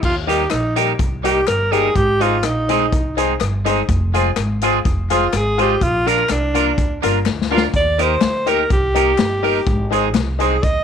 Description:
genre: ska.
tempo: 124 BPM.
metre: 4/4.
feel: straight.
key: Eb major.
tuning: A4 = 440 Hz.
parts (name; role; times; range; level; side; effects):
breathy alto saxophone; melody; 0.0-10.8 s; D4 to Eb5; -19 LUFS; right 1 dB; none.
upright bass; bass; 0.0-10.8 s; F1 to Eb2; -22 LUFS; equal; none.
vintage drum kit; drums; 0.0-10.8 s; crash cymbal, hi-hat, kick drum, rim click, snare drum; -21 LUFS; left 2 dB; none.
clean electric guitar; accompaniment; 0.3-10.6 s; G3 to Bb4; -21 LUFS; right 14 dB; none.
bright upright piano; stabs; 0.3-10.5 s; D4 to C5; -22 LUFS; left 13 dB; none.
group handclap; percussion; 0.5-10.3 s; none; -34 LUFS; left 12 dB; none.
room: light reverb, small room ambience.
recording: 1960s-style stereo with parts hard left and right.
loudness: -15 LUFS.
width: side -8 dB against mid.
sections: 0.0-10.8 A section.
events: alto saxophone solo 0.0-10.8; drum fill 7.3-7.7.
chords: 0.0 Eb; 2.0 Ab; 3.9 Fm; 5.8 Bb; 7.7 Eb; 9.7 Ab.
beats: | 0.03 0.51 0.99 1.48 | 1.96 2.44 2.92 3.41 | 3.89 4.37 4.85 5.33 | 5.82 6.30 6.78 7.26 | 7.74 8.23 8.71 9.19 | 9.67 10.15 10.63.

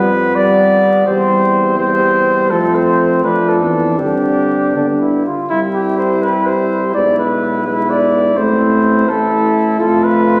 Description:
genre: classical, brass quintet.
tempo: 84 BPM (dotted quarters).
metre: 6/8.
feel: straight.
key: C major.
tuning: A4 = 437 Hz.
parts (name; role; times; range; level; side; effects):
mellow trumpet; melody; 0.0-10.4 s; E4 to D5; -17 LUFS; equal; none.
mellow trumpet; second line; 0.0-10.4 s; B3 to F4; -23 LUFS; equal; none.
mellow French horn; accompaniment; 0.0-10.4 s; G3 to G4; -24 LUFS; equal; none.
mellow euphonium; accompaniment; 0.0-10.4 s; D3 to A3; -20 LUFS; equal; none.
clear tuba; bass; 0.0-10.4 s; A1 to G2; -24 LUFS; equal; none.
room: wet scoring stage reverb, RT60 1.4 s.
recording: vinyl crackle.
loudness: -14 LUFS.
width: mono.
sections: 0.0-5.5 A section; 5.5-10.4 A section.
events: none.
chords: 0.0 G7/F; 1.1 C/E; 2.5 F; 3.2 Dm/F; 4.0 Gsus4; 4.8 G; 5.5 C; 6.9 E7/B; 8.4 Am; 9.8 F.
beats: 0.36 | 1.08 1.79 | 2.51 3.24 | 3.99 4.75 | 5.50 6.23 | 6.95 7.66 | 8.37 9.09 | 9.80.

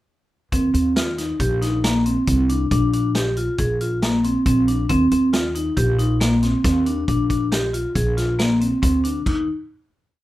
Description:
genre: progressive instrumental, band music in an uneven meter.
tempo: 137 BPM.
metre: 5/4.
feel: straight.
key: Eb major.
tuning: A4 = 441 Hz.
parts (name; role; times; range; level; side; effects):
vibraphone with medium hard mallets; arpeggios; 0.5-9.5 s; Bb3 to Ab4; -20 LUFS; equal; none.
upright bass; bass; 0.5-9.5 s; Bb1 to Eb2; -22 LUFS; equal; none.
vintage drum kit; drums; 0.5-9.4 s; crash cymbal, hi-hat, kick drum, snare drum; -25 LUFS; equal; none.
room: light reverb.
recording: rough home demo mix.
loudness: -17 LUFS.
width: side -16 dB against mid.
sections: 0.5-9.3 groove; 9.3-10.2 final note.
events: none.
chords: 0.5 Eb5; 2.7 Bb; 4.9 Eb5; 7.1 Bb; 9.3 N.C..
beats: | 0.53 0.97 1.40 1.84 2.28 | 2.71 3.15 3.59 4.03 4.46 | 4.90 5.34 5.77 6.21 6.64 | 7.08 7.52 7.95 8.39 8.83 | 9.26.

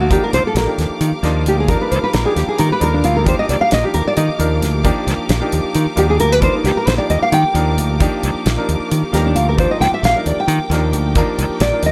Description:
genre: electric jazz fusion.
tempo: 266 BPM (eighths).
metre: 7/8.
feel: straight.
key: Eb major.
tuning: A4 = 440 Hz.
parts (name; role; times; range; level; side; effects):
nylon-string guitar; melody; 0.0-11.9 s; D4 to G5; -20 LUFS; equal; none.
warm concert grand piano; accompaniment; 0.0-11.9 s; F3 to Bb4; -24 LUFS; equal; none.
warm studio string section; sustained chords; 0.0-11.9 s; G4 to D6; -29 LUFS; equal; none.
modern bright fingered electric bass; bass; 0.0-11.9 s; Bb1 to Eb3; -20 LUFS; equal; none.
damped 70s drum kit; drums; 0.1-11.9 s; hi-hat, kick drum, snare drum; -22 LUFS; equal; none.
room: little or no reverb.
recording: none.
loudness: -16 LUFS.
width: mono.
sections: 0.0-11.9 A section.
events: nylon-string guitar solo 0.0-11.9.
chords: 0.0 Ebmaj9.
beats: | 0.10 0.33 0.56 0.78 1.01 1.23 1.46 | 1.69 1.91 2.14 2.36 2.59 2.82 3.04 | 3.27 3.50 3.72 3.95 4.17 4.40 4.62 | 4.85 5.08 5.30 5.53 5.75 5.98 6.21 | 6.43 6.66 6.88 7.11 7.33 7.56 7.78 | 8.01 8.23 8.46 8.69 8.91 9.13 9.36 | 9.59 9.81 10.03 10.26 10.48 10.71 10.93 | 11.16 11.38 11.61 11.83.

